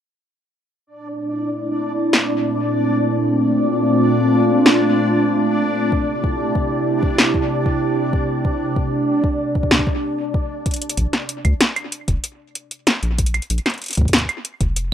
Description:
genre	IDM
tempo	95 BPM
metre	4/4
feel	straight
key	Bb lydian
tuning	A4 = 440 Hz
part	warbly tape-like pad	sustained chords	1.4-10.9 s	Bb2 to G4	-18 LUFS	right 1 dB	chorus, built-in reverb, sidechain pumping
part	bubbling stepped-filter texture	texture	1.0-11.0 s	D4 to D5	-24 LUFS	left 2 dB	chorus, built-in reverb
part	electro analog drum machine	drums	2.1-14.9 s	claves, hi-hat, snare drum	-18 LUFS	equal	none
part	electronic kick drum	drums	5.9-14.7 s	none	-21 LUFS	equal	none
part	round analog bass	bass	11.0-14.9 s	F1 to D2	-19 LUFS	equal	tube saturation
room	moderate small room reverb, RT60 0.5 s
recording	rough home demo mix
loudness	-16 LUFS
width	side -9 dB against mid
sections	0.9-11.0 A section; 11.0-14.9 B section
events	filter sweep on ambient pad 0.9-11.0; drum fill 10.7-11.0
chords	0.9 Bbmaj9#11; 5.9 Am7/C; 11.0 Bb

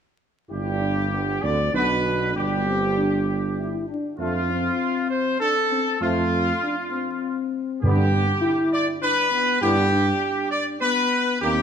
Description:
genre	classical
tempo	99 BPM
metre	3/4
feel	straight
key	G mixolydian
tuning	A4 = 441 Hz
part	clear trumpet section	melody	0.5-11.6 s	F4 to D5	-23 LUFS	equal	none
part	dark French horn section	sustained chords	0.5-11.6 s	A3 to E4	-27 LUFS	left 4 dB	none
part	warm trombone section	sustained chords	0.5-11.6 s	G2 to B3	-30 LUFS	right 3 dB	none
part	mellow tuba	bass	0.5-11.6 s	G1 to G2	-26 LUFS	right 2 dB	none
part	timpani	percussion	7.8-8.7 s	G2	-24 LUFS	equal	none
room	moderate concert hall reverb, RT60 2.3 s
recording	close, detailed microphones, vinyl crackle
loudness	-20 LUFS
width	side -7 dB against mid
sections	0.5-11.6 A section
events	none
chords	0.5 G; 4.2 F; 7.8 G

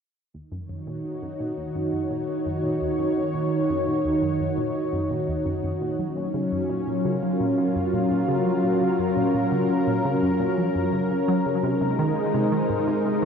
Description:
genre	ambient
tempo	85 BPM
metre	4/4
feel	straight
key	Eb dorian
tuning	A4 = 440 Hz
part	lush unison pad	sustained chords	0.3-13.2 s	Eb3 to Db5	-22 LUFS	equal	chorus
part	analog pluck	riff	0.3-13.2 s	Eb2 to Ab3	-30 LUFS	equal	chorus, ping-pong delay
room	wet plate reverb, RT60 2.7 s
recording	dark, warm production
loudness	-22 LUFS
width	side -6 dB against mid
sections	0.3-13.2 A section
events	fade-in on synth arpeggio sound 0.3-13.2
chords	0.3 Ebm7; 6.0 Gbmaj7; 11.6 Abadd9

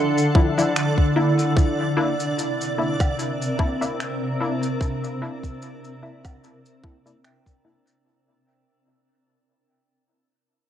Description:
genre	ambient dub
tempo	74 BPM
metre	4/4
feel	swing 55% on 16ths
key	unclear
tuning	A4 = 440 Hz
part	granular cloud pad	sustained chords	0.0-8.1 s	C3 to E6	-24 LUFS	equal	built-in reverb
part	soft synth bell	arpeggios	0.0-9.6 s	D4 to G5	-28 LUFS	right 1 dB	chorus, dub echo
part	backwards swelling texture	texture	0.0-8.1 s	D5	-31 LUFS	right 3 dB	built-in reverb
part	shaker, finger snaps and woodblock	drums	0.2-8.0 s	none	-32 LUFS	right 1 dB	dub echo
part	electronic kick drum	drums	0.3-7.6 s	none	-20 LUFS	equal	none
part	filtered dub chord stab	stabs	0.4-8.0 s	F3 to E4	-27 LUFS	left 2 dB	ensemble chorus, cassette tape, dub echo
room	light reverb, small room ambience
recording	echo-heavy mix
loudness	-20 LUFS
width	side -10 dB against mid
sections	0.0-8.1 A section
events	fade-out 0.0-8.1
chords	0.0 Dmadd9; 1.6 C7

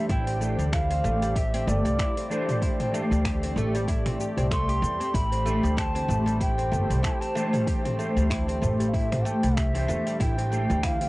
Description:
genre	organic downtempo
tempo	95 BPM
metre	4/4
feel	swing 56% on 16ths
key	A minor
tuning	A4 = 440 Hz
part	bright reedy bansuri	melody	0.0-11.1 s	C5 to C6	-31 LUFS	right 1 dB	cassette tape, tape echo, shimmer reverb
part	mellow electric guitar	accompaniment	0.0-11.1 s	E3 to C5	-35 LUFS	right 1 dB	ensemble chorus, sidechain pumping, cassette tape, shimmer reverb
part	warm analog pad	sustained chords	0.0-11.1 s	A3 to G5	-34 LUFS	equal	wide subtle chorus, sidechain pumping, cassette tape, shimmer reverb
part	oud	arpeggios	0.0-11.1 s	G3 to G4	-30 LUFS	equal	cassette tape, tape echo, shimmer reverb
part	upright bass	bass	0.1-11.1 s	G1 to E2	-27 LUFS	equal	sidechain pumping
part	deep house drum kit	drums	0.1-11.1 s	cabasa, finger snaps, hi-hat, toms	-34 LUFS	equal	overdrive
part	electronic kick drum	drums	0.1-11.0 s	none	-28 LUFS	equal	overdrive
part	udu	percussion	6.1-8.8 s	none	-34 LUFS	equal	none
room	light reverb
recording	home recording on cassette, nothing above 10.8 kHz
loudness	-23 LUFS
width	side -20 dB against mid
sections	0.0-11.1 A section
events	none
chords	0.0 Am7

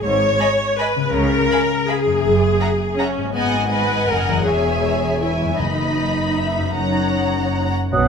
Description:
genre	classical, orchestral ballroom waltz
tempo	145-175 BPM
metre	3/4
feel	rubato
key	unclear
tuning	A4 = 440 Hz
part	rich symphonic viola section	accompaniment	0.0-7.7 s	B3 to C#5	-20 LUFS	left 1 dB	none
part	concert harp	arpeggios	0.0-8.1 s	E2 to E#5	-25 LUFS	left 10 dB	none
part	rich symphonic cello section	bass	0.0-8.1 s	E2 to C#3	-25 LUFS	right 4 dB	none
part	rich symphonic double bass section	bass	0.0-8.1 s	E1 to C#2	-26 LUFS	right 4 dB	none
part	rich symphonic violin section	melody	0.4-7.7 s	G#5 to B5	-28 LUFS	left 3 dB	none
part	dark symphonic violin section	second line	0.4-7.7 s	C#5 to G#5	-25 LUFS	left 1 dB	none
part	timpani	percussion	5.6-6.1 s	F#2	-29 LUFS	right 2 dB	none
part	mellow hollow small flute group	second line	7.9-8.1 s	D#6	-21 LUFS	right 3 dB	none
part	warm cor anglais	second line	7.9-8.1 s	F#5	-22 LUFS	right 4 dB	none
part	mellow bassoon	accompaniment	7.9-8.1 s	F#3	-20 LUFS	right 3 dB	none
room	moderate scoring stage reverb, RT60 1.6 s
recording	close, detailed microphones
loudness	-16 LUFS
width	side -6 dB against mid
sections	0.0-7.9 A section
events	none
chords	0.0 G#m; 1.1 C#7; 2.2 F#7; 3.3 G#m7; 4.5 C#m/E; 5.6 B/F#; 6.8 F#

